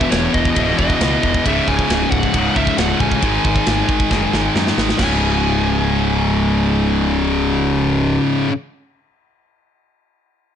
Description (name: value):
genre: heavy metal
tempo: 136 BPM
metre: 4/4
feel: straight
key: C# minor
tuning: A4 = 440 Hz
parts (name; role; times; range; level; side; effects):
- bluesy overdriven lead guitar; melody; 0.0-8.2 s; C#5 to G#5; -23 LUFS; right 1 dB; distortion
- high-gain distorted guitar; riff; 0.0-8.5 s; C#2 to G#3; -19 LUFS; left 7 dB; distortion
- high-gain distorted guitar; riff; 0.0-8.5 s; C#2 to G#3; -21 LUFS; right 16 dB; distortion
- fuzz picked electric bass; bass; 0.0-8.2 s; C#1 to F#2; -21 LUFS; right 1 dB; overdrive
- tight metal drum kit; drums; 0.0-5.1 s; crash cymbal, kick drum, ride cymbal, snare drum; -21 LUFS; right 1 dB; none
room: little or no reverb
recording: blown-out, overdriven recording, overdrive, nothing above 10.3 kHz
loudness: -14 LUFS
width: side -9 dB against mid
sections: 0.0-5.0 A section; 5.0-8.5 B section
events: drum fill 4.1-5.0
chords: 0.0 E5; 1.4 C#5; 3.2 G#5; 5.0 C#5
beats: 0.12 0.56 1.00 | 1.45 1.89 2.33 2.77 | 3.22 3.66 4.10 4.55 | 4.99 5.43 5.88 6.32 | 6.76 7.21 7.65 8.09